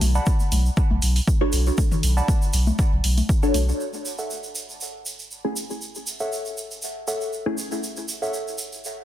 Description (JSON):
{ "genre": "dub techno", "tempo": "119 BPM", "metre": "4/4", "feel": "swing 54% on 16ths", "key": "F# minor", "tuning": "A4 = 440 Hz", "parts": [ { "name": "soft dub sub bass", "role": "bass", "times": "0.0-3.7 s", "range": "B1", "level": "-20 LUFS", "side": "equal", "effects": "sidechain pumping" }, { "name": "electronic hi-hat", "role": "drums", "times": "0.0-3.7 s", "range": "none", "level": "-28 LUFS", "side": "right 1 dB", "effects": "overdrive, low-pass filter on hats" }, { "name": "electronic congas and toms", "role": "percussion", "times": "0.0-3.7 s", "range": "none", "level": "-31 LUFS", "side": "left 4 dB", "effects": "sidechain pumping on perc, sidechain pumping on toms, dub echo" }, { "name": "tube shaker", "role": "percussion", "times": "0.0-8.9 s", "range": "none", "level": "-32 LUFS", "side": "right 3 dB", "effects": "none" }, { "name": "warbly dusty pluck", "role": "riff", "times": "0.2-8.3 s", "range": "A4 to B5", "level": "-32 LUFS", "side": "equal", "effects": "chorus, sidechain pumping, dub echo" }, { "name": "electronic kick drum", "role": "drums", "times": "0.3-3.4 s", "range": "none", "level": "-21 LUFS", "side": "equal", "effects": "overdrive" }, { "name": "filtered dub chord stab", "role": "stabs", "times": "1.4-7.6 s", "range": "A3 to C#5", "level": "-28 LUFS", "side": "left 1 dB", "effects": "phaser, sidechain pumping, dub echo" } ], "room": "little or no reverb", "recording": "dense, heavily limited modern master, faint mains hum", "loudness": "-21 LUFS", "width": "side -12 dB against mid", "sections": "0.0-3.8 A section; 3.8-9.0 B section", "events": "none", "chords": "0.0 Bm7; 3.8 F#m7" }